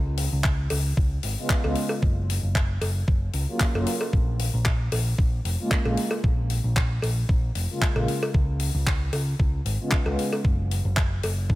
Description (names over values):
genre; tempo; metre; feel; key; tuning
nu-disco, nu disco; 114 BPM; 4/4; swing 54% on 16ths; unclear; A4 = 440 Hz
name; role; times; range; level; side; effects
picked electric bass; bass; 0.0-11.6 s; F1 to Db2; -25 LUFS; equal; none
tight funk drum kit; drums; 0.2-11.3 s; handclaps, hi-hat; -31 LUFS; left 2 dB; none
electronic kick drum; drums; 0.4-11.6 s; none; -23 LUFS; equal; none
cowbell; percussion; 0.7-11.3 s; none; -31 LUFS; equal; none
warm analog pad; accompaniment; 1.4-10.2 s; Db3 to F4; -30 LUFS; equal; chorus, dub echo
room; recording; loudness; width
little or no reverb; none; -22 LUFS; side -17 dB against mid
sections
0.0-11.6 A section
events
none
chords
0.0 Db7; 1.8 Gb5; 4.1 Bb5; 8.1 Db5; 10.2 N.C.